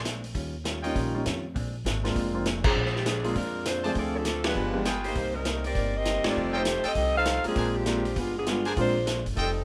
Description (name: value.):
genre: jazz, big band swing.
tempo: 200 BPM.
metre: 4/4.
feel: swing 62% on 8ths.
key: Bb mixolydian.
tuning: A4 = 441 Hz.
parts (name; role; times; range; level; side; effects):
vintage hollow-body jazz guitar; accompaniment; 0.0-9.6 s; Bb2 to Ab4; -40 LUFS; equal; none.
upright bass; bass; 0.0-9.6 s; F1 to F2; -35 LUFS; equal; none.
vintage drum kit; drums; 0.1-9.5 s; crash cymbal, hi-hat, kick drum, ride cymbal, snare drum; -34 LUFS; equal; none.
warm concert grand piano; accompaniment; 0.8-8.9 s; F3 to Ab4; -33 LUFS; equal; none.
bright trumpet section; stabs; 0.8-9.5 s; D4 to Bb5; -35 LUFS; equal; none.
warm saxophone section; melody; 2.7-9.6 s; Eb3 to F5; -31 LUFS; equal; none.
room: moderate small room reverb, RT60 0.5 s.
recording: rough home demo mix.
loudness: -28 LUFS.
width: mono.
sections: 0.0-9.6 A section.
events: band accent 2.6, 4.4, 6.2.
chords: 0.3 Eb9; 1.6 Bb9; 4.0 Dm7; 4.6 G7b9; 5.2 Cm7; 6.4 F9; 7.6 Bb9; 8.2 G7b9; 8.8 Bb9.